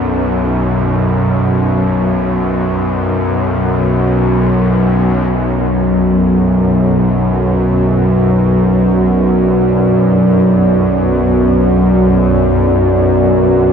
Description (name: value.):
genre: dark ambient drone.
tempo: free time.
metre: none.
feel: none.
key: B minor.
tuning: A4 = 440 Hz.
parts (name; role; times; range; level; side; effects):
bowed-like drone; drone; 0.0-13.7 s; B1 to F#2; -11 LUFS; equal; built-in reverb.
deep dark ambient pad; sustained chords; 8.1-13.7 s; B3 to D5; -17 LUFS; equal; chorus, built-in reverb.
room: wet huge ambient reverb, RT60 7.2 s.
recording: dreamy mix soaked in reverb, nothing above 7.5 kHz.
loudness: -10 LUFS.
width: side -7 dB against mid.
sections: 0.0-5.3 A section; 5.3-13.7 B section.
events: fade-in on ambient pad 5.3-13.7.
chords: 0.0 B5; 5.3 Bm.